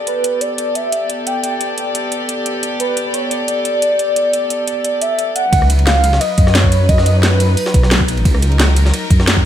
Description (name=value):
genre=liquid drum and bass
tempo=176 BPM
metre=4/4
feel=swing 54% on 16ths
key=unclear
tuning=A4 = 440 Hz
part: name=dark studio string section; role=sustained chords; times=0.0-9.5 s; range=Gb3 to D5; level=-22 LUFS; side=left 1 dB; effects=low-pass filter
part: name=warm velvety synth lead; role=melody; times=0.1-7.9 s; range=B4 to G5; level=-18 LUFS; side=equal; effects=chorus, ping-pong delay
part: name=garage drum kit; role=drums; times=0.1-9.3 s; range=hi-hat, rim click, snare drum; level=-20 LUFS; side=equal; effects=none
part: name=swelling detuned saw bass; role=bass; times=5.5-9.5 s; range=Ab1 to Gb2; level=-13 LUFS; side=equal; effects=none
part: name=electronic kick drum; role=drums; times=5.5-9.4 s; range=none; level=-14 LUFS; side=equal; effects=overdrive
part: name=jungle sampler-style drum kit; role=drums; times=5.5-9.4 s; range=hi-hat, ride cymbal, snare drum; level=-23 LUFS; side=right 1 dB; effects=overdrive, high-pass filter on cymbals, high-pass filter on snare, high-pass filter on hats
room=light reverb, digital ambience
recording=none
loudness=-13 LUFS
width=side -10 dB against mid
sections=0.0-5.5 A section; 5.5-9.5 B section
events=drop 5.5-9.5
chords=0.0 A9sus4; 5.5 Db9sus4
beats=| 0.07 0.41 0.75 1.09 | 1.44 1.78 2.12 2.46 | 2.80 3.14 3.48 3.82 | 4.16 4.50 4.84 5.19 | 5.53 5.87 6.21 6.55 | 6.89 7.23 7.57 7.91 | 8.25 8.60 8.94 9.28